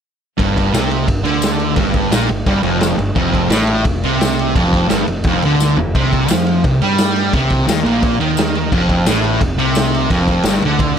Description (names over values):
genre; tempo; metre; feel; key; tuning
garage rock duo or trio; 173 BPM; 4/4; straight; unclear; A4 = 440 Hz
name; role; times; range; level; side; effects
fuzz guitar; riff; 0.4-11.0 s; F2 to G3; -15 LUFS; right 1 dB; distortion
growling fingered electric bass; bass; 0.4-11.0 s; F1 to G2; -22 LUFS; equal; overdrive, tube saturation
raw garage drum kit; drums; 0.4-10.9 s; crash cymbal, kick drum, ride cymbal, snare drum, toms; -18 LUFS; equal; none
tambourine; percussion; 0.7-10.5 s; none; -28 LUFS; left 14 dB; none
room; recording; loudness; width
light reverb; none; -13 LUFS; side -8 dB against mid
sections
0.4-11.0 A section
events
drum fill 5.6-5.9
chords
0.4 G5; 3.2 F5; 5.9 C5; 8.7 F5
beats
| 0.38 0.73 1.08 1.43 | 1.77 2.12 2.47 2.82 | 3.17 3.52 3.87 4.21 | 4.56 4.91 5.25 5.60 | 5.95 6.29 6.64 6.99 | 7.33 7.68 8.03 8.37 | 8.72 9.06 9.41 9.76 | 10.10 10.45 10.79